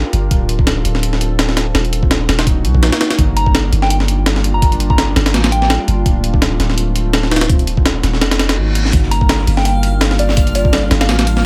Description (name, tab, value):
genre	drum and bass, jungle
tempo	167 BPM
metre	4/4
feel	swing 55% on 16ths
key	G minor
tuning	A4 = 441 Hz
part	warbly tape-like pad	sustained chords	0.0-11.5 s	G3 to Bb4	-25 LUFS	equal	chorus, built-in reverb
part	long sustained 808-style bass	bass	0.0-11.5 s	D1 to C2	-18 LUFS	equal	none
part	breakbeat sampler-style drum kit	drums	0.1-11.4 s	hi-hat, kick drum, snare drum	-17 LUFS	equal	small room reverb
part	soft synth bell	melody	3.4-6.0, 9.1-11.4 s	D5 to Bb5	-24 LUFS	equal	chorus, phaser, vintage 12-bit sampler grit, dub echo
part	reverse cymbal	sound effects	8.6-8.9 s	none	-28 LUFS	equal	none
part	crunchy breakbeat drum kit	drums	8.9-11.4 s	hi-hat, snare drum	-32 LUFS	equal	none
part	backwards swelling texture	texture	9.4-11.5 s	F5 to F6	-31 LUFS	equal	built-in reverb
room	little or no reverb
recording	none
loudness	-14 LUFS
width	mono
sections	0.0-11.5 A section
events	reverse cymbal 8.6-8.9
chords	0.3 Dm7; 1.7 Ebm7; 3.2 Gm7; 6.1 Dm7; 7.5 Ebm7; 8.9 Gm7